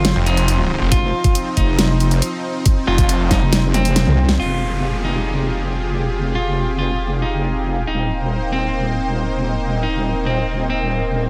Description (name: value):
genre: heavy wobble dubstep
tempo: 138 BPM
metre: 4/4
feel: half-time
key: F minor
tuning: A4 = 444 Hz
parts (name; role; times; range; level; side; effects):
- clean electric guitar; melody; 0.0-11.3 s; C4 to F4; -27 LUFS; equal; dub echo
- supersaw pad; sustained chords; 0.0-11.3 s; F3 to C5; -29 LUFS; equal; sidechain pumping
- wobble bass; bass; 0.0-11.3 s; Eb1 to C2; -22 LUFS; equal; chorus, overdrive
- dubstep drum kit; drums; 0.0-4.4 s; hi-hat, snare drum, toms; -22 LUFS; equal; studio reverb
- ethereal airy pad; texture; 0.0-11.3 s; C4 to C6; -30 LUFS; equal; ensemble chorus, built-in reverb, sidechain pumping
- snarling distorted saw bass; bass; 0.2-3.4 s; F1; -20 LUFS; equal; distortion, overdrive
- electronic kick drum; drums; 0.9-3.4 s; none; -19 LUFS; equal; studio reverb
- downlifter; sound effects; 4.4-7.9 s; none; -32 LUFS; equal; none
room: light reverb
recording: none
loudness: -18 LUFS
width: mono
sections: 0.0-4.4 A section; 4.4-11.3 B section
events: drop 0.0-4.4; drum fill 3.7-4.4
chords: 0.0 F5; 4.4 Fmadd9; 7.9 Cm7/Eb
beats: 0.05 0.48 | 0.92 1.35 1.79 2.22 | 2.66 3.09 3.52 3.96 | 4.39 4.83 5.26 5.70 | 6.13 6.57 7.00 7.44 | 7.87 8.31 8.74 9.18 | 9.61 10.05 10.48 10.92